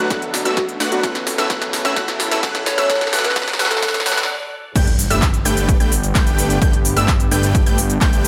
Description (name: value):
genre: EDM, festival progressive house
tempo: 129 BPM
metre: 4/4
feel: straight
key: unclear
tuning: A4 = 442 Hz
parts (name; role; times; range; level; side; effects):
- dark grand piano; accompaniment; 0.0-4.3 s; F#3 to A4; -29 LUFS; equal; sidechain pumping, digital delay
- lush unison pad; sustained chords; 0.0-8.3 s; C#3 to G4; -31 LUFS; equal; chorus, sidechain pumping
- unison pluck; arpeggios; 0.0-8.3 s; E6 to G6; -28 LUFS; equal; sidechain pumping, digital delay
- dense compressed supersaw; riff; 0.0-8.3 s; A3 to G5; -27 LUFS; equal; sidechain pumping, digital delay
- fat analog bass; bass; 0.0-8.3 s; G1 to B1; -26 LUFS; equal; none
- riser and impact; sound effects; 0.7-6.6 s; none; -32 LUFS; equal; none
- big-room dance drum kit; drums; 0.1-8.3 s; crash cymbal, handclaps, hi-hat, shaker, snare drum; -24 LUFS; equal; overdrive, high-pass filter on snare, high-pass filter on hats, high-pass filter on cymbals, high-pass filter on perc, high-pass filter on room
- electronic kick drum; drums; 0.1-8.1 s; none; -20 LUFS; equal; overdrive
- soft struck synth lead; melody; 0.5-4.1 s; F#4 to C#5; -26 LUFS; equal; chorus, digital delay
room: moderate digital room reverb, RT60 1.0 s, digital ambience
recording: high-pass filter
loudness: -17 LUFS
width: mono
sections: 0.0-4.8 A section; 4.8-8.3 B section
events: build-up 0.0-4.8; drum fill 0.0-4.3; stop 4.3-4.8; drop 4.8-8.3; impact 4.8-6.6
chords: 0.0 Bm7; 1.0 A; 4.8 Gadd9